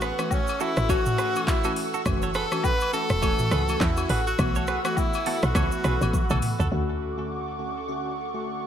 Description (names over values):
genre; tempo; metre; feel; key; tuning
afrobeats; 103 BPM; 4/4; swing 58% on 16ths; unclear; A4 = 441 Hz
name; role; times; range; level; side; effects
clear tenor saxophone; melody; 0.0-6.3 s; B3 to B4; -29 LUFS; equal; ping-pong delay
airy breathy pad; sustained chords; 0.0-8.7 s; A4 to E6; -32 LUFS; right 3 dB; chorus
direct-recorded clean electric guitar; riff; 0.0-6.7 s; F#4 to C#5; -35 LUFS; right 8 dB; ping-pong delay
woody log drum bass; bass; 0.0-8.7 s; E1 to E2; -27 LUFS; equal; none
afro-pop drum kit; drums; 0.0-6.7 s; handclaps, hi-hat, kick drum, rim click, shaker, toms; -27 LUFS; equal; none
glassy digital keys; accompaniment; 0.2-8.7 s; D3 to F#4; -31 LUFS; left 2 dB; chorus
agogo bells and woodblock; percussion; 0.2-6.4 s; none; -35 LUFS; left 6 dB; none
room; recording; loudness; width
light reverb; none; -22 LUFS; side -9 dB against mid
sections
0.0-6.7 A section; 6.7-8.7 B section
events
drum fill 6.1-6.7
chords
0.0 A6; 2.1 F#m7; 4.4 B7sus4; 6.7 Dmaj7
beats
0.31 0.89 1.47 | 2.06 2.64 3.22 3.80 | 4.39 4.97 5.55 6.13 | 6.72 7.30 7.88 8.46